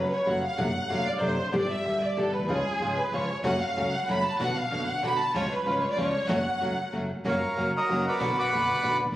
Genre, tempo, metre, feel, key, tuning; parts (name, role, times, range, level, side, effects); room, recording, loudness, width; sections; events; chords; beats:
tango; 189 BPM; 3/4; rubato; F# harmonic minor; A4 = 441 Hz
rich studio violin section; second line; 0.0-6.9 s; G#4 to B5; -28 LUFS; equal
nylon-string guitar; accompaniment; 0.0-9.0 s; B2 to G4; -29 LUFS; equal
upright bass; bass; 0.0-9.2 s; F#1 to D2; -36 LUFS; equal
bright studio string section; stabs; 3.4-9.0 s; G#3 to F#4; -37 LUFS; right 1 dB
bandoneon; melody; 7.3-9.0 s; F#4 to F#5; -25 LUFS; right 1 dB
wet recital hall reverb, RT60 1.7 s; recorded on a phone in the room, club reverb; -24 LUFS; side -14 dB against mid
0.0-7.2 A section; 7.2-9.2 B section
violin section solo 0.0-7.2
0.0 F#m; 0.6 D7/F#; 1.5 G; 2.5 C#; 3.4 F#m; 4.4 Bm; 5.3 C#; 6.3 F#m; 7.2 F#; 8.2 Bm
0.27 | 0.58 0.90 1.22 | 1.53 1.84 2.16 | 2.48 2.79 3.12 | 3.44 3.76 4.08 | 4.39 4.71 5.03 | 5.34 5.66 5.97 | 6.28 6.60 6.92 | 7.25 7.57 7.88 | 8.20 8.52 8.84 | 9.15